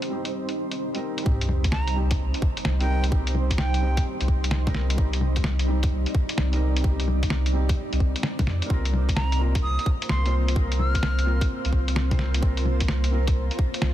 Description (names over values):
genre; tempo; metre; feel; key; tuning
future garage; 129 BPM; 4/4; swing 66% on 16ths; unclear; A4 = 440 Hz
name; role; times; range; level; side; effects
felt-muted upright piano; accompaniment; 0.0-13.9 s; G3 to C5; -34 LUFS; equal; sidechain pumping, ping-pong delay
granular cloud pad; sustained chords; 0.0-13.9 s; G3 to D5; -32 LUFS; equal; built-in reverb, sidechain pumping
lo-fi sampler-style drum kit; drums; 0.0-13.9 s; bongos, hi-hat, snare drum; -29 LUFS; left 1 dB; small room reverb
warm sub bass; bass; 1.3-13.9 s; C2 to F2; -24 LUFS; equal; sidechain pumping
electronic kick drum; drums; 1.3-13.7 s; none; -24 LUFS; equal; small room reverb
sub drop; sound effects; 1.3-3.1 s; none; -32 LUFS; equal; none
breathy bright concert flute; melody; 1.7-4.0, 9.2-11.5 s; G5 to F6; -33 LUFS; right 1 dB; dub echo
room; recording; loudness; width
little or no reverb; dense, heavily limited modern master; -21 LUFS; side -12 dB against mid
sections
0.0-1.3 A section; 1.3-13.9 B section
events
impact 1.3-3.1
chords
0.0 Cm; 8.7 Bbsus2/C